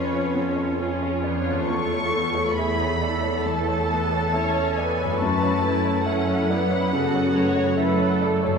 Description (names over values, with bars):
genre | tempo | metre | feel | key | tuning
cinematic, emotional film score for orchestra | 68 BPM | 4/4 | rubato | F# minor | A4 = 439 Hz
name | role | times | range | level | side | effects
muted symphonic violin section | melody | 0.0-8.2 s | C#5 to C#6 | -29 LUFS | left 2 dB | none
muted symphonic violin section | second line | 0.0-8.6 s | G#4 to C#5 | -29 LUFS | left 1 dB | none
clear grand piano | accompaniment | 0.0-8.6 s | E2 to D5 | -25 LUFS | left 1 dB | none
muted symphonic viola section | accompaniment | 0.0-8.6 s | A3 to A4 | -28 LUFS | right 2 dB | none
concert harp | arpeggios | 0.0-8.6 s | E2 to C#6 | -32 LUFS | left 5 dB | none
muted symphonic cello section | bass | 0.0-8.6 s | E2 to F#2 | -27 LUFS | right 4 dB | none
room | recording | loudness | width
wet scoring stage reverb, RT60 2.0 s | minimal, uncompressed stereo recording | -20 LUFS | side -6 dB against mid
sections
0.0-8.6 A section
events
none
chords
0.0 C#7/E#; 1.7 Amaj7/E; 5.2 F#m7